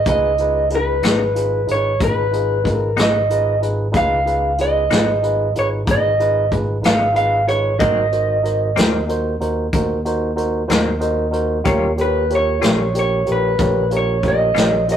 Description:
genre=slow blues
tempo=62 BPM (dotted quarters)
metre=12/8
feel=straight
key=unclear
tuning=A4 = 438 Hz
part: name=electric guitar through a small old amp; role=melody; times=0.0-15.0 s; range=Cb5 to F5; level=-18 LUFS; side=right 1 dB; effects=none
part: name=barky tine electric piano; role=accompaniment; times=0.1-15.0 s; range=Eb4 to Eb5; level=-22 LUFS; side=right 1 dB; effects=none
part: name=fingered electric bass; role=bass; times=0.1-15.0 s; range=Ab1 to Eb2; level=-23 LUFS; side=equal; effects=none
part: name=vintage brush drum kit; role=drums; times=0.1-15.0 s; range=hi-hat, kick drum, snare drum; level=-20 LUFS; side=left 1 dB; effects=none
part: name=semi-hollow electric guitar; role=accompaniment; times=1.0-14.8 s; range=Ab2 to F4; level=-24 LUFS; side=left 4 dB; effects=tremolo
room=moderate studio reverb, RT60 0.6 s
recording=rough rehearsal-room recording, warm saturation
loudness=-15 LUFS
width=side -9 dB against mid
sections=0.0-15.0 A section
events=tine electric piano fill 10.7-11.7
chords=0.0 Db9; 7.8 Ab9; 11.7 Eb9

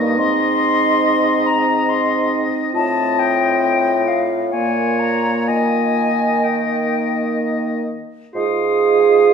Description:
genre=classical, slow romantic movement for wind quintet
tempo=61-71 BPM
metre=3/4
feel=rubato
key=Ab major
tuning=A4 = 440 Hz
part: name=bright oboe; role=second line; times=0.0-9.3 s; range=Db5 to C6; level=-23 LUFS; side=left 4 dB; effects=none
part: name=dark clarinet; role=accompaniment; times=0.0-9.3 s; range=Eb4 to Ab4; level=-20 LUFS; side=right 7 dB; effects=none
part: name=warm French horn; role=accompaniment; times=0.0-9.3 s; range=Bb3 to F4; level=-22 LUFS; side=left 2 dB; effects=none
part: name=warm bassoon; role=bass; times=0.0-9.3 s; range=G2 to Eb3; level=-23 LUFS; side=right 1 dB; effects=none
part: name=silver concert flute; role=melody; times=0.2-9.3 s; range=F5 to Eb6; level=-20 LUFS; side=left 4 dB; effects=none
room=wet recital hall reverb, RT60 1.3 s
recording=recorded in a church or concert hall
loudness=-15 LUFS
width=side -6 dB against mid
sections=0.0-8.4 A section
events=none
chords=0.2 Ab; 2.7 F7/A; 4.5 Bbm7; 5.5 Eb; 8.4 Ab

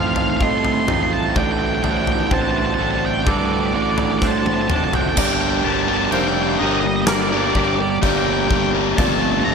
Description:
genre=post-rock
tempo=63 BPM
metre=4/4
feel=straight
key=G minor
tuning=A4 = 437 Hz
part: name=octave-fuzz lead guitar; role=melody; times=0.0-9.5 s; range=D5 to C6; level=-24 LUFS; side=left 1 dB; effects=distortion, analog delay
part: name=evolving wavetable pad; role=sustained chords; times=0.0-9.5 s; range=D3 to C5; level=-32 LUFS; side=left 2 dB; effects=none
part: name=felt-muted upright piano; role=arpeggios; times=0.0-9.5 s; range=A4 to Eb5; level=-31 LUFS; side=right 6 dB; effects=analog delay
part: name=twangy electric guitar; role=arpeggios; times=0.0-9.5 s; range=G2 to A4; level=-28 LUFS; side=left 5 dB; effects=phaser, analog delay
part: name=distorted electric guitar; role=riff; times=0.0-9.5 s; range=A2 to Bb4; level=-22 LUFS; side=right 14 dB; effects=distortion
part: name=fuzz fingered electric bass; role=bass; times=0.0-9.5 s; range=F1 to A2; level=-25 LUFS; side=left 1 dB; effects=overdrive
part: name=huge arena drum kit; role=drums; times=0.2-9.2 s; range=crash cymbal, kick drum, snare drum, toms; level=-23 LUFS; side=left 1 dB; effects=none
part: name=overdriven semi-hollow guitar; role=riff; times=5.2-9.5 s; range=F3 to Bb4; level=-22 LUFS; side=left 15 dB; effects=none
room=light reverb, studio reverb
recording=none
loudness=-16 LUFS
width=side -6 dB against mid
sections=0.0-5.2 A section; 5.2-9.5 B section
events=build-up 0.0-5.2; drum fill 4.2-5.2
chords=0.0 F7/A; 1.4 D7sus4/A; 5.2 Gm; 9.0 F6/G

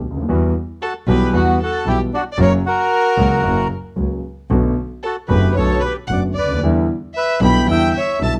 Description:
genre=tango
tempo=114 BPM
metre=4/4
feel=rubato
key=unclear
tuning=A4 = 440 Hz
part: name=warm double bass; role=bass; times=0.0-8.4 s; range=F#1 to E2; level=-22 LUFS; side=equal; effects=none
part: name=dark concert grand piano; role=accompaniment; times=0.1-8.4 s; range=F#1 to F#4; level=-22 LUFS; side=equal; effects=none
part: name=bandoneon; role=melody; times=0.8-8.4 s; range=B3 to B5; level=-22 LUFS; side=equal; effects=none
part: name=warm violin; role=second line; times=0.8-8.3 s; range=F#4 to B5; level=-26 LUFS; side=equal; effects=none
room=light reverb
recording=close, detailed microphones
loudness=-17 LUFS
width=mono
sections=0.0-8.4 A section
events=none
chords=0.3 Emadd9; 2.4 F#; 4.5 Bm7; 6.6 Em7

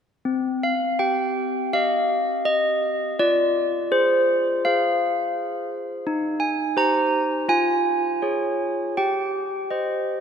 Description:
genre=classical, tune for handbells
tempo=82 BPM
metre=4/4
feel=straight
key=C minor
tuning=A4 = 436 Hz
part: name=handbells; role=solo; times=0.3-10.2 s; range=C4 to Bb5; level=-20 LUFS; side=equal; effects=none
room=wet church reverb, RT60 3.5 s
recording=none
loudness=-20 LUFS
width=side -7 dB against mid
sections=0.3-10.2 A section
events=none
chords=0.3 Cm; 3.2 Fm; 6.1 Cm/Eb; 7.5 Db/F; 9.0 Cm/G

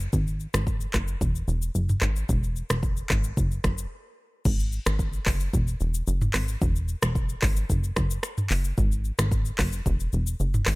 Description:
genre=afrobeats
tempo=111 BPM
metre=4/4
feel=straight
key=unclear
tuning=A4 = 440 Hz
part: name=plucky analog bass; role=bass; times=0.0-10.8 s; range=E1 to G#1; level=-26 LUFS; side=equal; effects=none
part: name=afro-pop drum kit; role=drums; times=0.0-10.8 s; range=crash cymbal, finger snaps, handclaps, hi-hat, kick drum, rim click, shaker, toms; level=-26 LUFS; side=equal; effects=none
room=little or no reverb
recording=none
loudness=-23 LUFS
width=side -23 dB against mid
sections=0.0-4.5 A section; 4.5-10.8 B section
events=break 3.9-4.5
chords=none

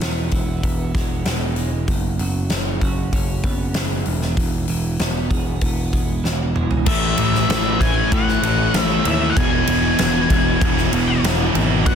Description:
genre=quiet-loud alternative rock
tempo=96 BPM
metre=4/4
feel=straight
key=unclear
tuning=A4 = 439 Hz
part: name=twelve-string electric guitar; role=arpeggios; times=0.0-6.9 s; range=E2 to G#4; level=-27 LUFS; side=right 7 dB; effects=lush chorus, tape echo
part: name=overdriven picked electric bass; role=bass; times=0.0-11.9 s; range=E1 to A2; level=-23 LUFS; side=equal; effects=none
part: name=huge arena drum kit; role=drums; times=0.0-11.9 s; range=crash cymbal, hi-hat, kick drum, ride cymbal, snare drum, toms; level=-21 LUFS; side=equal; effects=soft clipping on snare
part: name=octave-fuzz lead guitar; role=melody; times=6.9-11.9 s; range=E5 to G#5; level=-23 LUFS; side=left 6 dB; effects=distortion
part: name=sludgy distorted guitar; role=riff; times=6.9-11.9 s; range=E2 to B3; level=-22 LUFS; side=left 14 dB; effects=overdrive
part: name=thick fuzz guitar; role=riff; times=6.9-11.9 s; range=E2 to B3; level=-22 LUFS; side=right 13 dB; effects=distortion
room=light reverb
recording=dense, heavily limited modern master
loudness=-17 LUFS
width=side -8 dB against mid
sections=0.0-6.9 A section; 6.9-11.9 B section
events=drum fill 6.2-6.9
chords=0.0 E; 1.9 Bsus2/F#; 4.1 E; 6.9 A5; 9.4 E

